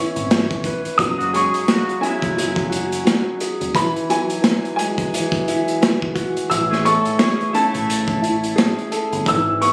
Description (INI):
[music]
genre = hip hop, boom-bap hip-hop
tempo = 87 BPM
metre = 4/4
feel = swing 59% on 16ths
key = unclear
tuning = A4 = 438 Hz
[part]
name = warm upright piano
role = melody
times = 0.0-9.7 s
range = G#5 to E6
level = -24 LUFS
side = equal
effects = high-pass filter, low-pass filter
[part]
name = dark baby grand piano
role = accompaniment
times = 0.0-9.7 s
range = E3 to B4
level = -24 LUFS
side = equal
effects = cassette tape, high-pass filter, low-pass filter
[part]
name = deep dub fingered electric bass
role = bass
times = 0.2-9.7 s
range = D#1 to A1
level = -29 LUFS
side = equal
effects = none
[part]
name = crunchy breakbeat drum kit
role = drums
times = 0.2-9.7 s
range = hi-hat, kick drum, rim click, snare drum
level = -24 LUFS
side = equal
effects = none
[part]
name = mellow horn section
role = stabs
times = 1.2-8.2 s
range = C#3 to A4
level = -29 LUFS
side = equal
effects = high-pass filter, low-pass filter, tape echo
[sound]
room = light reverb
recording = recorded on a phone in the room, studio reverb, compression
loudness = -19 LUFS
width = mono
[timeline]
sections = 0.0-9.7 A section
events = kick muted 6.5-7.9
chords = 0.0 C#m7/G#; 1.0 F#sus2; 3.7 Eadd9; 6.5 Amaj7